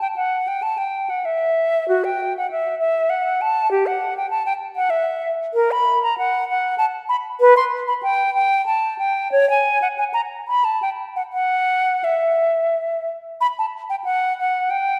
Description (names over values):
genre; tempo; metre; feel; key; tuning
classical, baroque-style fantasia for unaccompanied flute; 84-102 BPM; 3/4; rubato; unclear; A4 = 440 Hz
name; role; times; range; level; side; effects
silver concert flute; solo; 0.0-15.0 s; F#4 to C6; -20 LUFS; equal; none
room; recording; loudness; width
wet concert hall reverb, RT60 1.8 s; recorded in a church or concert hall; -20 LUFS; mono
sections
0.0-13.4 A section; 13.4-15.0 A section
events
none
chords
none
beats
| 0.01 0.64 1.25 | 1.89 2.51 3.12 | 3.73 4.32 4.92 | 5.56 6.20 6.81 | 7.43 8.05 8.66 | 9.32 9.98 10.64 | 11.34 12.04 12.73 | 13.42 14.06 14.70